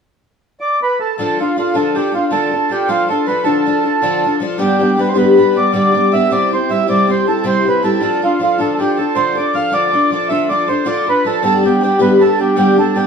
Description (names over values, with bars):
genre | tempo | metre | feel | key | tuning
celtic folk | 105 BPM (dotted quarters) | 9/8 | straight | D dorian | A4 = 440 Hz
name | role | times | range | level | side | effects
mellow accordion | melody | 0.6-13.1 s | F4 to F5 | -15 LUFS | right 3 dB | none
picked twelve-string acoustic guitar | accompaniment | 1.2-13.1 s | G2 to A4 | -15 LUFS | left 2 dB | none
room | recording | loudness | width
wet studio reverb, RT60 0.7 s | band playing live in one room | -12 LUFS | side -6 dB against mid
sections
0.0-1.2 A section; 1.2-13.1 B section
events
none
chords
0.0 N.C.; 1.2 Dm; 4.6 G; 6.3 C; 8.0 Dm; 11.4 G